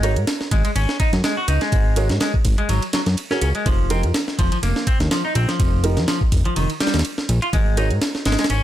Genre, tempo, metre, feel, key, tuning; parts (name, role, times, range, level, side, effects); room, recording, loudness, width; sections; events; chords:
breakbeat, breaks; 124 BPM; 4/4; swing 55% on 16ths; A4 = 441 Hz
semi-hollow electric guitar; riff; 0.0-8.6 s; Eb3 to Gb4; -24 LUFS; equal; low-pass filter, tape echo
dark baby grand piano; stabs; 0.0-7.9 s; Eb4 to Db5; -28 LUFS; right 4 dB; vintage 12-bit sampler grit, low-pass filter, tape echo
fat analog bass; bass; 0.0-8.6 s; F1 to Ab2; -19 LUFS; equal
breakbeat sampler-style drum kit; drums; 0.0-8.6 s; hi-hat, kick drum, ride cymbal, snare drum; -21 LUFS; equal
electronic hi-hat; drums; 0.0-8.6 s; -32 LUFS; right 2 dB; overdrive
little or no reverb; -17 LUFS; side -12 dB against mid
0.0-8.6 A section
0.0 Ab7sus4; 3.7 F7sus4; 7.5 Ab9sus4